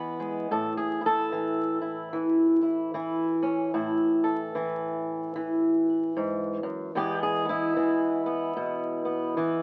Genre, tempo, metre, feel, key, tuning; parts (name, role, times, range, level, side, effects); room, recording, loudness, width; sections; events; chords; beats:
acoustic country blues, solo or duo; 74 BPM; 4/4; swing 60% on 8ths; A4 = 440 Hz
fingerpicked swing-style acoustic guitar; solo; 0.0-9.6 s; E2 to B4; -27 LUFS; equal
moderate studio reverb, RT60 0.6 s; very old 78 rpm record, vinyl crackle; -27 LUFS; mono
0.0-9.6 A section
0.0 E; 0.5 A5; 7.0 E
| 0.51 1.32 2.13 2.93 | 3.74 4.54 5.35 6.15 | 6.96 7.76 8.56 9.37